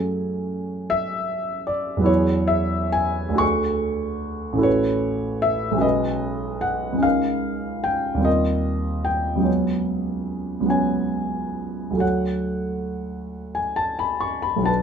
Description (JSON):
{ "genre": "classical, impressionist solo piano", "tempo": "42-52 BPM (dotted quarters)", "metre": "6/8", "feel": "rubato", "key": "unclear", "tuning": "A4 = 440 Hz", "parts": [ { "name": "clear concert grand piano", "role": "solo", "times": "0.0-14.8 s", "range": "A1 to C#6", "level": "-20 LUFS", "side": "equal", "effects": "none" } ], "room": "light reverb", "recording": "minimal, uncompressed stereo recording", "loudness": "-20 LUFS", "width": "side -7 dB against mid", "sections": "0.0-14.8 A section", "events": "none", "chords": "0.0 F#madd9; 2.1 Eadd9; 3.4 Dmaj7#11; 4.7 A69; 5.8 B69; 7.0 C#69; 8.3 D#69; 9.5 C#7sus4; 12.0 Dmaj7" }